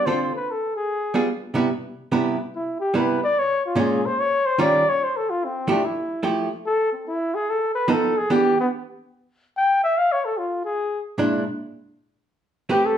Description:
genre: jazz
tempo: 146 BPM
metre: 4/4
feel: swing 66% on 8ths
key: C major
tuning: A4 = 441 Hz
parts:
  - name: warm flugelhorn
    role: melody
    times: 0.0-13.0 s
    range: B3 to G5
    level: -21 LUFS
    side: left 1 dB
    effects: none
  - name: archtop guitar, miked and amplified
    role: accompaniment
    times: 0.0-8.5, 11.2-13.0 s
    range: Bb2 to B4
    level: -22 LUFS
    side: right 2 dB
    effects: none
room: wet large studio reverb, RT60 0.8 s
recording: band playing live in one room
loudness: -20 LUFS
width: side -9 dB against mid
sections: 0.0-1.7 A section; 1.7-13.0 B section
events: none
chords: 0.0 Dm7; 0.9 G7b9; 1.7 Cmaj7; 3.3 Bbm7; 4.2 Eb9; 5.0 Fmaj9; 6.6 N.C.; 7.5 F7#11; 8.3 Em7; 9.9 N.C.; 10.8 Bb7#11; 11.6 Am9

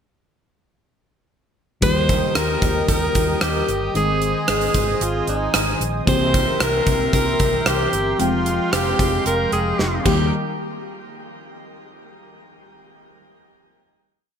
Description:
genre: 1980s-style pop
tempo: 113 BPM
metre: 4/4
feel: straight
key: Eb major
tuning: A4 = 439 Hz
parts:
  - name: bright alto saxophone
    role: melody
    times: 1.8-10.3 s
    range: Eb4 to C5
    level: -23 LUFS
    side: equal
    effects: shimmer reverb, digital delay
  - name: FM electric piano with soft pad layer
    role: accompaniment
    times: 1.8-10.3 s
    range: Eb3 to G5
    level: -25 LUFS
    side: left 2 dB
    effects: chorus, shimmer reverb
  - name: brassy analog pad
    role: sustained chords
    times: 1.8-10.3 s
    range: Ab3 to Eb6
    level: -28 LUFS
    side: right 1 dB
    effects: chorus, tremolo, shimmer reverb
  - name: vintage muted fingered electric bass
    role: bass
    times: 1.8-10.3 s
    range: F1 to Eb2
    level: -26 LUFS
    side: equal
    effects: none
  - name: gated 80s drum kit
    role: drums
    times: 1.8-10.2 s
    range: crash cymbal, hi-hat, kick drum, rim click, snare drum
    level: -21 LUFS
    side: equal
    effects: gated reverb
room: moderate plate reverb, RT60 1.9 s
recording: bright 1980s-style digital production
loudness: -17 LUFS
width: side -8 dB against mid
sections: 1.8-10.3 verse; 10.3-12.4 final hit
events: drum fill 9.8-10.3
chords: 1.8 Eb; 3.9 Ab; 6.1 C7; 8.2 Fmadd9; 10.1 Eb; 10.3 N.C.

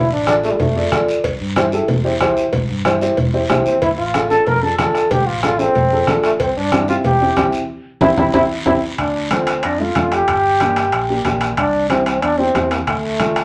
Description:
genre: latin, cumbia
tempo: 186 BPM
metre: 4/4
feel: straight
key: D minor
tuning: A4 = 440 Hz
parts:
  - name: warm trombone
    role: second line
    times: 0.0-0.9, 3.7-13.4 s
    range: G3 to Bb4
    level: -20 LUFS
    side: equal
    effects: none
  - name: fingered electric bass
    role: bass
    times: 0.0-13.4 s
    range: G1 to G2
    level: -29 LUFS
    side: equal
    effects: none
  - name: dark upright piano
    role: accompaniment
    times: 0.3-13.4 s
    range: A3 to A5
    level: -21 LUFS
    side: equal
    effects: none
  - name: bombo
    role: percussion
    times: 0.3-13.4 s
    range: none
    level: -25 LUFS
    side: equal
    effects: none
  - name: congas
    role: percussion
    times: 0.3-13.4 s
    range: none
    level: -26 LUFS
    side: equal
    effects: none
  - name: cowbell and timbales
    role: percussion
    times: 0.3-13.4 s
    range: none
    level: -28 LUFS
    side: equal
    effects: none
  - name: guiro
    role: percussion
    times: 0.3-13.4 s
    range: none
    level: -34 LUFS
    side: equal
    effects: none
room: wet club reverb, RT60 0.6 s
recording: none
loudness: -17 LUFS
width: mono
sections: 0.0-9.0 A section; 9.0-13.4 B section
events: trombone solo 0.0-9.0, 9.0-13.4; band accent 7.7-9.0; drum fill 8.0-9.0; upright piano fill 13.2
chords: 0.0 Dm; 1.2 C; 3.8 Dm; 6.4 C; 9.0 Dm; 10.3 Gm; 11.6 C; 12.9 Dm

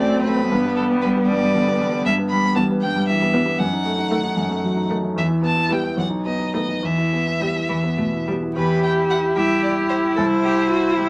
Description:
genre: quick classical-period movement for piano quartet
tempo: 68-78 BPM (dotted quarters)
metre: 6/8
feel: rubato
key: E minor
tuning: A4 = 440 Hz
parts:
  - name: clear violin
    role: melody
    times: 0.0-11.1 s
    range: A4 to B5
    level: -27 LUFS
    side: equal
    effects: none
  - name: clear cello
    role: second line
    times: 0.0-11.1 s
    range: D#3 to A4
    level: -28 LUFS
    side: equal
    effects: none
  - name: clear baby grand piano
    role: accompaniment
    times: 0.0-11.1 s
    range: B1 to G4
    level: -24 LUFS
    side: equal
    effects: none
  - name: rich viola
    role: accompaniment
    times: 0.0-11.1 s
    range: G3 to G4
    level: -24 LUFS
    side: equal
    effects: none
room: moderate studio reverb, RT60 0.6 s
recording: vinyl crackle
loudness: -20 LUFS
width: mono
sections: 0.0-8.6 A section; 8.6-11.1 B section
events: none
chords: 0.5 G; 2.0 Em/G; 3.6 D#dim/F#; 5.2 Em; 6.0 B7; 6.8 Em; 10.2 C

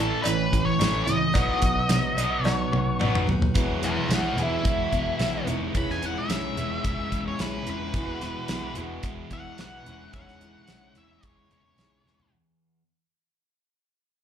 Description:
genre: classic rock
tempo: 109 BPM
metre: 4/4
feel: straight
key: E major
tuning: A4 = 440 Hz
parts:
  - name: octave-fuzz lead guitar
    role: melody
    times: 0.0-12.3 s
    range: E4 to B5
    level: -29 LUFS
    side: left 1 dB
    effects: distortion, slapback echo, plate reverb
  - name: picked steel-string acoustic guitar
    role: accompaniment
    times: 0.0-12.3 s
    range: E2 to F#4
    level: -32 LUFS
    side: right 1 dB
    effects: slapback echo
  - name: overdriven electric guitar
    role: riff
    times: 0.0-12.8 s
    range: E2 to E4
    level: -32 LUFS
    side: right 12 dB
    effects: none
  - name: overdriven semi-hollow guitar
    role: riff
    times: 0.0-12.8 s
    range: E2 to C#4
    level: -33 LUFS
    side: left 11 dB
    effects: slapback echo
  - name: hollow-body short-scale picked electric bass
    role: bass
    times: 0.0-12.3 s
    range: E1 to D#2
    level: -31 LUFS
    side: equal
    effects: none
  - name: cowbell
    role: percussion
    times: 0.2-3.1 s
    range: none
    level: -35 LUFS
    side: left 3 dB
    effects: slapback echo
  - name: damped 70s drum kit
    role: drums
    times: 0.3-12.3 s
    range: hi-hat, kick drum, snare drum, toms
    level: -27 LUFS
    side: equal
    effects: none
room: moderate club reverb, RT60 0.8 s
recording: live gig heard through the venue's PA, club reverb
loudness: -23 LUFS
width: side -9 dB against mid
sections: 0.0-3.6 A section; 3.6-12.3 B section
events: drum fill 2.5-3.6, 12.1; fade-out 3.6-12.3; lead electric guitar solo 3.6-12.3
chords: 0.0 A; 1.4 B; 3.6 Eadd9; 5.5 C#madd9/E; 7.9 Eadd9; 9.9 C#madd9/E

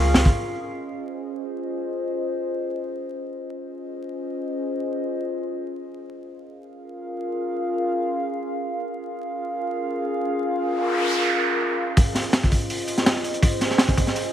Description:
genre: drum and bass, jungle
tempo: free time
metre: none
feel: none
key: unclear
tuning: A4 = 440 Hz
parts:
  - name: warbly tape-like pad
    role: sustained chords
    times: 0.0-14.3 s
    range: Db4 to F5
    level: -26 LUFS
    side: equal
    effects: chorus, built-in reverb
  - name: crunchy breakbeat drum kit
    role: drums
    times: 0.1-0.3, 12.0-14.2 s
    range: hi-hat, kick drum, snare drum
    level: -19 LUFS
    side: equal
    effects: none
  - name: breakbeat sampler-style drum kit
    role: drums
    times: 0.2, 12.0-14.2 s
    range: hi-hat, snare drum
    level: -32 LUFS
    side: right 1 dB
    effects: high-pass filter on hats, high-pass filter on snare
  - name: noise sweep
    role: sound effects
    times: 10.7-12.0 s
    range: none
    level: -25 LUFS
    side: right 3 dB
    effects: none
room: moderate echo chamber reverb, RT60 2.2 s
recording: vinyl crackle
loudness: -22 LUFS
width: side -10 dB against mid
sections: 0.3-12.0 A section; 12.0-14.3 B section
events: noise sweep 10.7-12.0; build-up 12.0-14.3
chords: 0.3 Dbmaj9; 6.2 Bbm7/Db; 12.0 Dbmaj9

